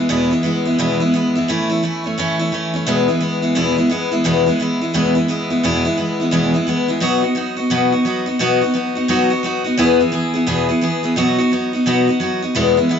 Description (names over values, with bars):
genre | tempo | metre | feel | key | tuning
rock | 173 BPM | 4/4 | swing 63% on 8ths | E major | A4 = 440 Hz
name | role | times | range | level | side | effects
picked steel-string acoustic guitar | solo | 0.0-13.0 s | E2 to G#4 | -15 LUFS | left 1 dB | none
room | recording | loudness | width
moderate studio reverb, RT60 0.8 s | band playing live in one room, nothing above 7.8 kHz | -15 LUFS | side -7 dB against mid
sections
0.0-12.6 A section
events
none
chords
0.0 E; 1.5 A; 2.9 E; 7.0 B; 9.8 E; 11.2 B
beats
| 0.10 0.45 0.79 1.14 | 1.49 1.83 2.18 2.52 | 2.87 3.22 3.56 3.91 | 4.25 4.60 4.95 5.29 | 5.64 5.98 6.33 6.67 | 7.02 7.37 7.71 8.06 | 8.40 8.75 9.10 9.44 | 9.79 10.13 10.48 10.83 | 11.18 11.52 11.87 12.21 | 12.56 12.91